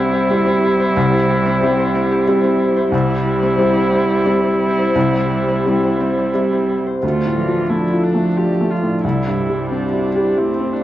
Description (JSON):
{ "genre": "neoclassical piano and strings", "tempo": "90 BPM", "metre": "3/4", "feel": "rubato", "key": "unclear", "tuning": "A4 = 440 Hz", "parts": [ { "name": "muted cello", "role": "second line", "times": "0.0-10.8 s", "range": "E3 to A3", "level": "-21 LUFS", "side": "right 3 dB", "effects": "none" }, { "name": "felt-muted upright piano", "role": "accompaniment", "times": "0.0-10.8 s", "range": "C2 to G4", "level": "-18 LUFS", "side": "equal", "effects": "none" }, { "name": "muted viola", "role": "accompaniment", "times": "0.0-10.8 s", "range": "C4 to G4", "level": "-22 LUFS", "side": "equal", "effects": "none" }, { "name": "hollow soft pad", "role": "sustained chords", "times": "0.0-10.8 s", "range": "D4 to D5", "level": "-25 LUFS", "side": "equal", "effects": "none" }, { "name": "Celtic harp", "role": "arpeggios", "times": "0.0-7.1 s", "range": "C4 to G5", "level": "-22 LUFS", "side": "left 2 dB", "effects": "tape echo" } ], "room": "moderate recital hall reverb, RT60 1.6 s", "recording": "worn, warbling old tape, cassette tape, warbly pitch drift", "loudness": "-14 LUFS", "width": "side -13 dB against mid", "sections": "0.0-7.0 A section; 7.0-10.8 B section", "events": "none", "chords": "0.0 C; 7.0 Dm; 9.0 C", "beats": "0.30 | 0.96 1.61 2.27 | 2.93 3.59 4.26 | 4.95 5.65 6.34 | 7.03 7.70 8.37 | 9.04 9.70 10.37" }